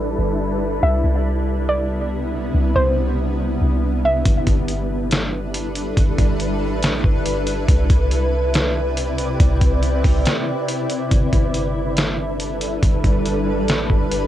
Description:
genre	hip hop, atmospheric cloud-rap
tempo	140 BPM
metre	4/4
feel	half-time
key	G major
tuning	A4 = 440 Hz
part	shimmering ambient pad	sustained chords	0.0-14.3 s	C3 to D5	-22 LUFS	equal	chorus, built-in reverb, low-pass filter, cassette tape
part	soft 808-style bass	bass	0.0-14.3 s	G1 to C2	-21 LUFS	equal	none
part	soft round pluck	melody	0.8-4.2 s	C5 to E5	-23 LUFS	right 1 dB	chorus, low-pass filter, cassette tape, analog delay
part	trip hop sampler-style drum kit	drums	4.3-14.2 s	hi-hat, kick drum, snare drum	-18 LUFS	equal	cassette tape
room	light reverb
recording	home recording on cassette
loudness	-17 LUFS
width	side -12 dB against mid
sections	0.0-4.3 A section; 4.3-14.3 B section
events	break 10.3-11.1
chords	0.0 G6; 0.8 Cmaj7; 4.3 G6; 7.7 Cmaj7; 11.1 G6

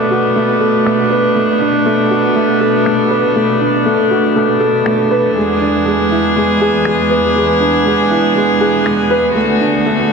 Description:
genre	piano and strings electronica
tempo	120 BPM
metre	4/4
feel	straight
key	B dorian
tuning	A4 = 439 Hz
part	rich string quartet	sustained chords	0.0-10.1 s	D3 to G#4	-15 LUFS	left 1 dB	none
part	felt-muted upright piano	riff	0.0-10.1 s	G#3 to B4	-13 LUFS	right 1 dB	low-pass filter, diffuse ambient delay
part	dark studio cello section	bass	0.0-10.1 s	D2 to B2	-24 LUFS	equal	none
part	organic electronic drum kit	drums	0.1-10.0 s	finger snaps, hi-hat	-31 LUFS	left 3 dB	none
room	wet cathedral reverb, RT60 6.7 s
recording	dreamy mix soaked in reverb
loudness	-11 LUFS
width	side -5 dB against mid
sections	0.0-10.1 A section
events	filter sweep on felt piano 0.0-10.1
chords	0.0 Bm7; 5.4 E7; 9.4 D6

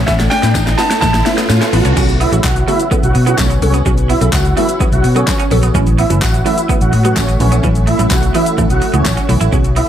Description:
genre	dance-pop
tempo	127 BPM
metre	4/4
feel	straight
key	unclear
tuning	A4 = 444 Hz
part	granular cloud pad	sustained chords	0.0-9.9 s	A3 to F#5	-24 LUFS	left 1 dB	built-in reverb, sidechain pumping, low-pass filter
part	wide unison pluck	arpeggios	0.0-1.9 s	A3 to C#5	-27 LUFS	right 1 dB	none
part	electric guitar at the edge of break-up	riff	0.0-9.8 s	A3 to E4	-23 LUFS	right 6 dB	wide subtle chorus, low-pass filter, tape echo
part	vintage muted fingered electric bass	bass	0.0-9.8 s	F#1 to B2	-14 LUFS	equal	sidechain pumping
part	riser	sound effects	0.0-2.0 s	none	-21 LUFS	right 1 dB	none
part	clear concert grand piano	melody	0.1-1.3 s	E5 to A5	-18 LUFS	right 1 dB	low-pass filter, tape echo
part	glassy wavetable pluck	accompaniment	0.1-9.8 s	C#3 to A4	-20 LUFS	right 1 dB	chorus, low-pass filter
part	deep house drum kit	drums	0.1-9.9 s	crash cymbal, handclaps, hi-hat, kick drum, shaker, snare drum	-17 LUFS	equal	none
part	tambourine	percussion	0.5-9.2 s	none	-32 LUFS	left 12 dB	none
part	filtered supersaw swell	melody	2.2-9.9 s	C#4 to F#5	-18 LUFS	right 2 dB	sidechain pumping, tape echo
room	light reverb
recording	echo-heavy mix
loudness	-10 LUFS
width	side -10 dB against mid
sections	0.0-2.0 A section; 2.0-9.9 B section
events	build-up 0.0-2.0; drum fill 0.0-2.0; riser 0.0-2.0; filter sweep 0.0-2.0; drop 2.0-9.9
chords	0.1 Aadd9; 2.0 Bsus2; 5.7 F#m7

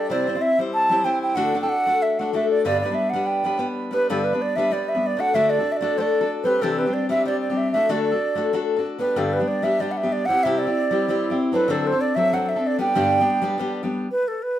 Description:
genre	celtic folk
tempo	189 BPM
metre	4/4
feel	swing 53% on 8ths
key	G major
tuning	A4 = 440 Hz
part	wooden flute	melody	0.0-14.6 s	A4 to A5	-21 LUFS	right 2 dB	none
part	picked steel-string acoustic guitar	accompaniment	0.0-14.1 s	G2 to C5	-23 LUFS	left 3 dB	none
room	moderate studio reverb, RT60 0.7 s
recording	minimal, uncompressed stereo recording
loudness	-19 LUFS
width	side -12 dB against mid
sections	0.0-3.9 A section; 3.9-14.1 B section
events	none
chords	0.1 C; 1.4 D; 2.6 G; 5.2 D; 6.4 Cadd9; 7.7 D; 9.0 G; 10.3 C; 11.5 D7; 12.8 G; 14.1 N.C.

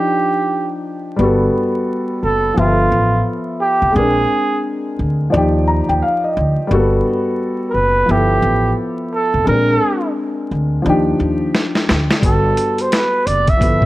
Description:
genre	hip hop, jazz-hop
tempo	87 BPM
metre	4/4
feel	swing 62% on 16ths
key	unclear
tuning	A4 = 440 Hz
part	breathy flugelhorn	melody	0.0-13.9 s	F4 to E5	-16 LUFS	right 2 dB	none
part	dark concert grand piano	accompaniment	0.0-13.9 s	F3 to Bb5	-18 LUFS	left 1 dB	none
part	upright bass	bass	1.2-13.9 s	F1 to Eb2	-18 LUFS	equal	none
part	boom bap sampler-style drum kit	drums	11.5-13.9 s	hi-hat, kick drum, snare drum	-16 LUFS	equal	vintage 12-bit sampler grit
room	light reverb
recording	vinyl crackle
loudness	-14 LUFS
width	side -17 dB against mid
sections	0.0-1.2 A section; 1.2-13.9 B section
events	break 0.0-1.2; grand piano fill 5.3-6.7; drum fill 11.5-12.2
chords	0.0 Ebmaj9; 1.2 Gmaj9; 2.6 G13; 3.9 Bb9; 5.3 Ebmaj9; 6.7 Gmaj9; 8.1 G13; 9.5 Bb9; 10.8 Ebmaj9; 12.2 Gmaj9

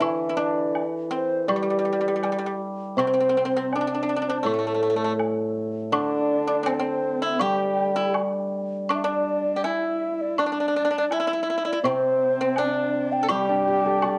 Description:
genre	chinese traditional, Chinese chamber ensemble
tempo	81 BPM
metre	2/4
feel	straight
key	G zhi mode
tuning	A4 = 440 Hz
part	mellow hollow xiao	melody	0.0-14.2 s	G4 to G5	-29 LUFS	equal	cassette tape
part	pipa	second line	0.0-14.2 s	G3 to A4	-31 LUFS	equal	cassette tape
part	hammered dulcimer	accompaniment	0.0-9.6, 11.8-14.2 s	A2 to D5	-28 LUFS	equal	cassette tape
part	woodblock	percussion	0.0-14.2 s	none	-32 LUFS	equal	none
part	dark horsehead fiddle	second line	3.0-14.2 s	A3 to G4	-34 LUFS	equal	cassette tape
room	moderate small room reverb, RT60 0.5 s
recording	home recording on cassette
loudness	-24 LUFS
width	mono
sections	0.0-3.0 A section; 3.0-14.2 B section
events	none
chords	none

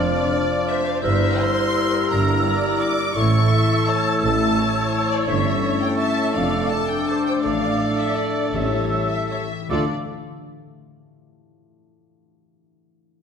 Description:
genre	classical, orchestral ballroom waltz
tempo	146-184 BPM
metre	3/4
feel	rubato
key	D minor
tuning	A4 = 440 Hz
part	rich studio violin section	melody	0.0-9.9 s	C#5 to D6	-29 LUFS	left 6 dB	none
part	mellow clarinet	second line	0.0-9.9 s	D4 to G4	-30 LUFS	left 2 dB	none
part	mellow large flute ensemble	second line	0.0-9.9 s	C#6 to F6	-28 LUFS	right 1 dB	none
part	rich studio violin section	second line	0.0-9.9 s	D4 to D6	-31 LUFS	left 4 dB	none
part	warm oboe	second line	0.0-9.8 s	A4 to D5	-30 LUFS	right 2 dB	none
part	mellow bassoon	accompaniment	0.0-9.9 s	F3 to A3	-29 LUFS	right 2 dB	none
part	warm studio viola section	accompaniment	0.0-9.9 s	D4 to E5	-27 LUFS	right 1 dB	none
part	concert harp	arpeggios	0.0-10.9 s	F2 to E6	-29 LUFS	left 8 dB	none
part	rich studio double bass section	bass	0.0-9.9 s	F1 to D2	-26 LUFS	right 4 dB	none
part	warm studio cello section	bass	0.0-9.9 s	F2 to D3	-27 LUFS	right 3 dB	none
part	dark French horn section	sustained chords	0.3-9.9 s	G3 to F4	-27 LUFS	left 4 dB	none
part	timpani	percussion	8.5-9.9 s	A2 to D3	-33 LUFS	left 3 dB	none
room	wet scoring stage reverb, RT60 1.6 s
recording	none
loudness	-18 LUFS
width	side -7 dB against mid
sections	0.0-9.7 A section; 9.7-10.9 B section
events	none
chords	0.0 Dm/F; 1.0 Edim/G; 3.2 A; 5.3 A7/G; 6.4 Dm/F; 7.4 Dm/A; 8.5 A7; 9.7 Dm

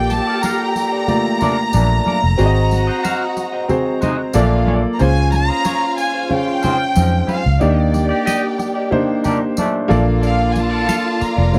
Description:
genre	lush 1970s-style soul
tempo	92 BPM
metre	4/4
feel	straight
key	Bb major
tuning	A4 = 439 Hz
part	warm chamber violin section	melody	0.0-11.6 s	D5 to Bb5	-24 LUFS	equal	none
part	dark studio string section	second line	0.0-11.6 s	F4 to G5	-28 LUFS	equal	none
part	warm grand piano	accompaniment	0.0-11.6 s	A3 to F5	-22 LUFS	equal	none
part	vintage muted fingered electric bass	bass	0.0-11.6 s	F1 to F2	-18 LUFS	equal	none
part	clean electric guitar	riff	0.1-11.5 s	Eb4 to F5	-27 LUFS	equal	wah
part	congas	percussion	0.1-11.6 s	none	-26 LUFS	equal	none
part	tambourine	percussion	0.1-11.6 s	none	-37 LUFS	equal	none
part	clear trombone section	stabs	1.4-10.0 s	Ab2 to Eb4	-25 LUFS	equal	none
room	little or no reverb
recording	dry, close 1970s-style studio recording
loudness	-17 LUFS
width	mono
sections	0.0-5.0 A section; 5.0-11.6 A section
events	none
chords	0.0 Bbmaj7; 2.4 Ab7; 4.3 Bbmaj7; 5.0 Dbmaj7; 7.6 Ebmaj7; 9.9 Bbmaj7

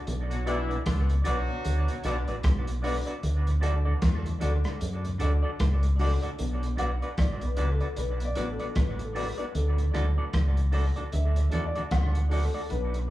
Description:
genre	roots reggae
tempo	76 BPM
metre	4/4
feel	swing 59% on 16ths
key	B minor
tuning	A4 = 437 Hz
part	deep dub fingered electric bass	bass	0.1-13.1 s	A1 to F#2	-26 LUFS	equal	none
part	crunchy breakbeat drum kit	drums	0.1-13.1 s	hi-hat, kick drum, rim click	-31 LUFS	equal	none
part	warm horn section	second line	0.3-2.2 s	D3 to F#4	-35 LUFS	left 1 dB	none
part	mellow tonewheel organ	accompaniment	0.3-13.0 s	D2 to D4	-39 LUFS	left 2 dB	chorus vibrato, slow rotary speaker, dub echo
part	semi-hollow electric guitar	accompaniment	0.5-12.6 s	D4 to D5	-35 LUFS	right 1 dB	dub echo
part	dark upright piano	stabs	0.5-13.1 s	F#3 to F#5	-36 LUFS	left 4 dB	none
room	moderate large studio reverb, RT60 1.2 s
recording	band playing live in one room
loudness	-25 LUFS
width	side -15 dB against mid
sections	0.0-6.4 A section; 6.4-13.1 B section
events	upright piano solo 6.4-13.1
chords	0.1 Bm; 3.2 D; 6.4 Bm; 9.6 D

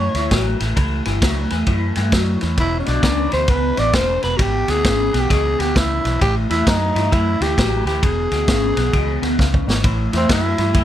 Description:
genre	electric blues shuffle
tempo	132 BPM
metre	4/4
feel	swing 63% on 8ths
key	unclear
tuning	A4 = 442 Hz
part	growling tenor saxophone	melody	0.0-10.8 s	C4 to D5	-20 LUFS	equal	none
part	electric guitar through a small old amp	riff	0.0-10.8 s	E2 to F#3	-22 LUFS	left 2 dB	phaser
part	vintage muted fingered electric bass	bass	0.0-10.8 s	E1 to G2	-21 LUFS	equal	none
part	vintage drum kit	drums	0.1-10.8 s	kick drum, ride cymbal, snare drum	-20 LUFS	equal	none
room	light reverb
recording	none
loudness	-15 LUFS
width	side -11 dB against mid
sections	0.0-9.8 A section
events	drum fill 9.4-9.8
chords	0.0 A; 2.6 E; 6.2 A5; 8.0 E7; 9.8 A7(no3)

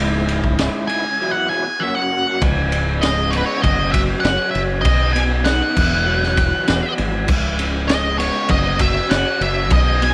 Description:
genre	psychedelic rock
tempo	99 BPM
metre	4/4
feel	straight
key	C# dorian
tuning	A4 = 440 Hz
part	overdriven tonewheel organ	sustained chords	0.0-10.1 s	C#4 to B4	-35 LUFS	equal	none
part	electric guitar through a small old amp	riff	0.0-10.1 s	C#2 to F#4	-27 LUFS	equal	rotary speaker
part	growling fingered electric bass	bass	0.0-10.1 s	C#1 to B1	-23 LUFS	equal	overdrive
part	crunchy breakbeat drum kit	drums	0.3-10.1 s	crash cymbal, kick drum, ride cymbal, snare drum	-23 LUFS	equal	none
part	octave-fuzz lead guitar	melody	0.9-10.1 s	B4 to G#5	-23 LUFS	equal	distortion, slapback echo
room	light reverb, small room ambience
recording	none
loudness	-18 LUFS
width	mono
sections	0.0-2.4 A section; 2.4-10.1 B section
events	lead electric guitar solo 0.0-2.4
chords	0.0 C#m; 1.2 Eadd9; 1.8 F#; 2.4 C#m7; 3.6 F#sus4; 4.9 Badd9; 5.8 Esus2; 7.3 C#m7; 8.5 F#sus4

